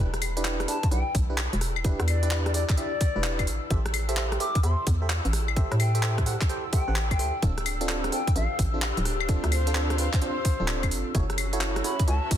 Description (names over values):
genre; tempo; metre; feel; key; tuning
UK garage, two-step garage; 129 BPM; 4/4; swing 65% on 16ths; E phrygian; A4 = 440 Hz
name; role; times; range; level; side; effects
ethereal airy pad; sustained chords; 0.0-12.4 s; E6; -40 LUFS; left 2 dB; ensemble chorus, built-in reverb, phaser, sidechain pumping
FM electric piano; stabs; 0.0-12.2 s; C4 to G5; -33 LUFS; right 2 dB; chorus, digital delay
hollow knocking FM bass; bass; 0.0-12.4 s; D1 to A2; -27 LUFS; equal; sidechain pumping
rich chamber string section; texture; 0.0-12.4 s; C#4 to G5; -40 LUFS; left 2 dB; sidechain pumping
garage drum kit; drums; 0.1-12.4 s; claves, handclaps, hi-hat, rim click; -30 LUFS; left 1 dB; soft clipping on snare
mellow hollow silver concert flute; melody; 0.7-12.3 s; C5 to D6; -33 LUFS; left 3 dB; digital delay
electronic kick drum; drums; 0.8-12.4 s; none; -26 LUFS; equal; none
room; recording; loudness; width
digital ambience; dense, heavily limited modern master; -23 LUFS; side -10 dB against mid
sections
0.0-12.4 A section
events
fade-in on string section 0.0-12.4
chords
0.0 Em7; 3.5 Am7; 7.4 Dm7; 11.1 F#m7